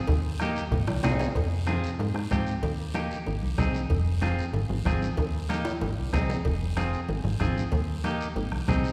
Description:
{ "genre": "latin, cumbia", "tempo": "189 BPM", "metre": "4/4", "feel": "straight", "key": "F minor", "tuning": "A4 = 440 Hz", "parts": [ { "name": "plucky analog bass", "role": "bass", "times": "0.0-8.9 s", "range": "F1 to Ab2", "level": "-31 LUFS", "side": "equal", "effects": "none" }, { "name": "bombo", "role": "percussion", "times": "0.1-8.8 s", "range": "none", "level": "-34 LUFS", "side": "equal", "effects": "none" }, { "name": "cowbell and timbales", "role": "percussion", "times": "0.1-8.5 s", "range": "none", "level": "-40 LUFS", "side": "equal", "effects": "none" }, { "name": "guiro", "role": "percussion", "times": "0.1-8.9 s", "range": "none", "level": "-48 LUFS", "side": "equal", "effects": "none" }, { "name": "semi-hollow electric guitar", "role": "accompaniment", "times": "0.4-8.9 s", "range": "Bb3 to Ab4", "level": "-35 LUFS", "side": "equal", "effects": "none" }, { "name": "congas", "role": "percussion", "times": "0.4-8.8 s", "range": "none", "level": "-36 LUFS", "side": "equal", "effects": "none" } ], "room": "wet scoring stage reverb, RT60 1.9 s", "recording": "recorded in a church or concert hall", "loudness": "-28 LUFS", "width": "mono", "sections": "0.0-1.4 A section; 1.4-8.9 B section", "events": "drum fill 0.9-1.4, 5.7-6.4", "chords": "0.1 Eb; 0.7 Ab; 1.4 Fm; 2.6 Eb; 3.3 Ab; 3.9 Fm; 5.2 Eb; 5.8 Ab; 6.4 Fm; 7.7 Eb; 8.4 Ab", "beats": "| 0.09 0.41 0.72 1.04 | 1.36 1.68 2.00 2.31 | 2.63 2.95 3.27 3.58 | 3.90 4.22 4.54 4.86 | 5.17 5.49 5.81 6.13 | 6.45 6.77 7.09 7.41 | 7.72 8.04 8.36 8.68" }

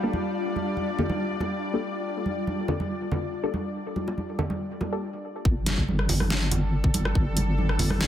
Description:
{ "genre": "deep dubstep", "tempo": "141 BPM", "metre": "4/4", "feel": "half-time", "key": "unclear", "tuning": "A4 = 443 Hz", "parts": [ { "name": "bowed-like drone", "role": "sustained chords", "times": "0.0-8.1 s", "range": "G3 to D5", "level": "-33 LUFS", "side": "left 1 dB", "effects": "built-in reverb" }, { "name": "filtered dub chord stab", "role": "stabs", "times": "0.0-5.0 s", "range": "Bb3 to A4", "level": "-33 LUFS", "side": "left 2 dB", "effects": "phaser, dub echo" }, { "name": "wind-like tuned noise texture", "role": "texture", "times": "0.0-5.0 s", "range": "D4 to F4", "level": "-35 LUFS", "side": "left 5 dB", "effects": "built-in reverb" }, { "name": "congas and bongos", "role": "percussion", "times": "0.1-8.0 s", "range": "none", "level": "-30 LUFS", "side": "right 2 dB", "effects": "none" }, { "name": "deep soft wobble bass", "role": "bass", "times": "5.5-8.1 s", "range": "G1", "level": "-25 LUFS", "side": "equal", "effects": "chorus" }, { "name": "electronic kick drum", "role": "drums", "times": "5.5-7.2 s", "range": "none", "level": "-24 LUFS", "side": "equal", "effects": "none" }, { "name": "dubstep drum kit", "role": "drums", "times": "5.7-8.1 s", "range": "hi-hat, rim click, snare drum", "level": "-28 LUFS", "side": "equal", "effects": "overdrive" } ], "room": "light reverb", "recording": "none", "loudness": "-24 LUFS", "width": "side -11 dB against mid", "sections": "0.0-5.5 A section; 5.5-8.1 B section", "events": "stop 5.0-5.5; drop 5.5-8.1", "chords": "0.0 Gmadd9; 5.5 Gsus2", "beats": "| 0.35 0.77 1.20 1.62 | 2.05 2.47 2.90 3.32 | 3.75 4.17 4.60 5.03 | 5.45 5.88 6.30 6.73 | 7.15 7.58 8.01" }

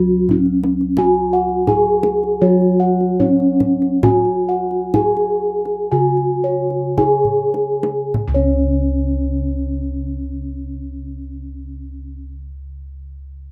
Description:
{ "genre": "Javanese gamelan", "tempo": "49-89 BPM", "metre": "4/4", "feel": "straight", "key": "unclear", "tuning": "A4 = 437 Hz", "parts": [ { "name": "gamelan-type bronze metallophone", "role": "melody", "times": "0.0-12.2 s", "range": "C#4 to G#4", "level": "-20 LUFS", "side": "equal", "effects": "none" }, { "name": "gamelan-type bossed gongs", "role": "bass", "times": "0.0-12.2 s", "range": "C#2 to F#4", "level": "-23 LUFS", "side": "equal", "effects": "none" }, { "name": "kendang", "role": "percussion", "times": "0.3-8.7 s", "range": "none", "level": "-25 LUFS", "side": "equal", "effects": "none" }, { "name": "gamelan-type bossed gongs", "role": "arpeggios", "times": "1.0-12.2 s", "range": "C#5 to G#5", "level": "-25 LUFS", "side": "equal", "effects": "none" } ], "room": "moderate small room reverb, RT60 0.5 s", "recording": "rough home demo mix", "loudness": "-17 LUFS", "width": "mono", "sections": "0.0-8.2 A section; 8.2-13.1 B section", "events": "slowing down 1.0-8.2; drum fill 7.3-8.2", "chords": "none", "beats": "0.31 | 0.98 1.68 2.42 3.20 | 4.04 4.94 5.92 6.98 | 8.15 9.38 10.60 11.83" }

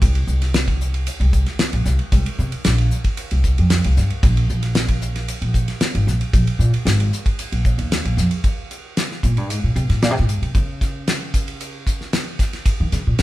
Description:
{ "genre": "electric jazz fusion", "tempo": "114 BPM", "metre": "4/4", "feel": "straight", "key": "unclear", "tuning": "A4 = 440 Hz", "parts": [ { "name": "upright bass", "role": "bass", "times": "0.0-13.2 s", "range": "Ab1 to Eb3", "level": "-18 LUFS", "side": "equal", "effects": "none" }, { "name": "damped 70s drum kit", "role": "drums", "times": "0.0-13.2 s", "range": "hi-hat, kick drum, ride cymbal, snare drum", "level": "-21 LUFS", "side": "equal", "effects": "none" } ], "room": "light reverb", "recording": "band playing live in one room", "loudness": "-17 LUFS", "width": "side -16 dB against mid", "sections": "0.0-8.4 A section; 8.4-13.2 B section", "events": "upright bass solo 8.4-13.2", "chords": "none", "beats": "| 0.02 0.55 1.07 1.60 | 2.12 2.65 3.18 3.70 | 4.23 4.75 5.28 5.81 | 6.33 6.86 7.39 7.91 | 8.44 8.97 9.49 10.02 | 10.55 11.08 11.60 12.13 | 12.66 13.19" }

